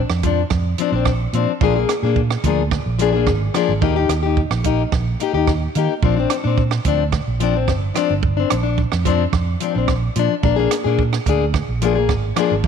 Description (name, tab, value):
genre	highlife guitar band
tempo	109 BPM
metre	4/4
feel	straight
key	Bb major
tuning	A4 = 440 Hz
part	fingered electric bass	bass	0.1-12.7 s	G1 to Eb3	-20 LUFS	right 2 dB	none
part	compact cocktail drum kit	drums	0.1-12.7 s	hi-hat, kick drum, rim click	-22 LUFS	right 6 dB	none
part	fingerpicked plugged-in steel-string acoustic guitar	accompaniment	0.2-12.7 s	F3 to Ab4	-19 LUFS	left 9 dB	none
room	light reverb, small room ambience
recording	1960s-style stereo with parts hard left and right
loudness	-16 LUFS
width	side -7 dB against mid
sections	0.0-12.7 A section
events	none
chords	0.0 Bbadd9; 1.6 Bb7; 3.8 Eb; 6.0 Bbadd9; 10.4 Bb7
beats	0.52 1.07 | 1.62 2.17 2.72 3.27 | 3.82 4.38 4.93 5.48 | 6.03 6.58 7.13 7.68 | 8.23 8.78 9.34 9.89 | 10.44 10.99 11.54 12.09 | 12.64